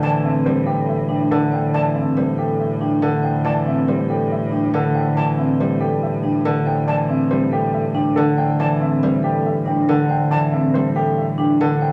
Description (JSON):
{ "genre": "classical, minimalist pattern music", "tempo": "140 BPM", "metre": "4/4", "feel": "straight", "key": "A minor", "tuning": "A4 = 443 Hz", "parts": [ { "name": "warm baby grand piano", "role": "melody", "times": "0.0-11.9 s", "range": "G4 to G5", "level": "-27 LUFS", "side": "equal", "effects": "none" }, { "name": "Celtic harp", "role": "accompaniment", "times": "0.0-11.9 s", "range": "D3 to G3", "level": "-22 LUFS", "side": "equal", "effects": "none" }, { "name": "concert flute", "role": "arpeggios", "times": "0.0-10.4 s", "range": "A5", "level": "-30 LUFS", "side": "equal", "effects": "none" }, { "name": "vibraphone with medium mallets", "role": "arpeggios", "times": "0.0-11.9 s", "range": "C4 to C5", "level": "-24 LUFS", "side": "equal", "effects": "none" }, { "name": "rich cello", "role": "bass", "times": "0.0-11.9 s", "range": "A2", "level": "-29 LUFS", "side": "equal", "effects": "none" } ], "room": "wet large studio reverb, RT60 1.5 s", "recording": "none", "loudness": "-19 LUFS", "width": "mono", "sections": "0.0-11.9 A section", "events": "none", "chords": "0.0 Am7", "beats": "| 0.03 0.46 0.88 1.31 | 1.74 2.17 2.60 3.03 | 3.46 3.88 4.31 4.74 | 5.17 5.60 6.03 6.46 | 6.88 7.31 7.74 8.17 | 8.60 9.03 9.46 9.88 | 10.31 10.74 11.17 11.60" }